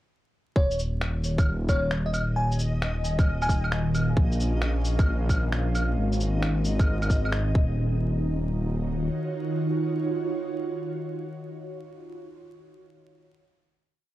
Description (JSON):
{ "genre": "future garage", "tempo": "133 BPM", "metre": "4/4", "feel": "swing 66% on 16ths", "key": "Eb dorian", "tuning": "A4 = 442 Hz", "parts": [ { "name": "bell-like FM electric piano", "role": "melody", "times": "0.6-3.7 s", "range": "Db5 to Ab5", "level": "-32 LUFS", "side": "left 1 dB", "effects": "chorus, analog delay" }, { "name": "swelling detuned saw bass", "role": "bass", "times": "0.6-9.1 s", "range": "Eb1 to Bb1", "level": "-26 LUFS", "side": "equal", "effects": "tube saturation, sidechain pumping" }, { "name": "electronic kick drum", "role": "drums", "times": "0.6-7.7 s", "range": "none", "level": "-22 LUFS", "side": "equal", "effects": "vintage 12-bit sampler grit" }, { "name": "backwards swelling texture", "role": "texture", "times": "2.4-7.8 s", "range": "Eb5", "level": "-40 LUFS", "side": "left 2 dB", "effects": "built-in reverb" }, { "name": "electronic shaker, finger snaps and claves", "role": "drums", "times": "0.7-7.4 s", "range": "none", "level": "-33 LUFS", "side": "equal", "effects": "vintage 12-bit sampler grit" }, { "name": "ethereal airy pad", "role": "sustained chords", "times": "3.3-12.2 s", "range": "Bb2 to F5", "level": "-31 LUFS", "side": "right 2 dB", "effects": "ensemble chorus, built-in reverb, phaser, sidechain pumping" } ], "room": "little or no reverb", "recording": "dry, gritty hardware recording, vinyl crackle", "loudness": "-23 LUFS", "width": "side -15 dB against mid", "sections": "0.6-7.8 groove; 7.8-11.4 final chord", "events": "none", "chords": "0.6 Ebm7; 4.2 Bbm; 6.0 Ab; 7.6 N.C.; 7.8 Ebm7", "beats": "| 0.56 1.01 1.46 1.91 | 2.36 2.81 3.27 3.72 | 4.17 4.62 5.07 5.52 | 5.97 6.42 6.88 7.33 | 7.78 8.23 8.68 9.13 | 9.58 10.03 10.48 10.94" }